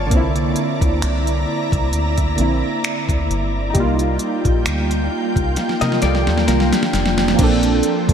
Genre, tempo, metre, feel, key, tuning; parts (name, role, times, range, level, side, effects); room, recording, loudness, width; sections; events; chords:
contemporary R&B; 66 BPM; 4/4; swing 54% on 16ths; A4 = 440 Hz
warm analog keys; accompaniment; 0.0-8.1 s; D3 to A4; -21 LUFS; right 1 dB; chorus
ethereal airy pad; sustained chords; 0.0-8.1 s; Bb3 to C6; -22 LUFS; right 1 dB; ensemble chorus, built-in reverb
deep dub fingered electric bass; bass; 0.0-8.1 s; F1 to C3; -20 LUFS; equal
smooth R&B drum kit; drums; 0.1-8.1 s; crash cymbal, finger snaps, hi-hat, kick drum, snare drum; -21 LUFS; equal; gated reverb
direct-recorded clean electric guitar; arpeggios; 5.8-7.4 s; D4 to Eb5; -25 LUFS; left 6 dB; wide subtle chorus, ping-pong delay
moderate lush hall reverb, RT60 2.5 s; bright 1980s-style digital production; -16 LUFS; side -8 dB against mid
0.0-7.4 A section
drum fill 5.6-7.4
0.1 C9; 3.8 F9sus4; 7.4 Bbmaj9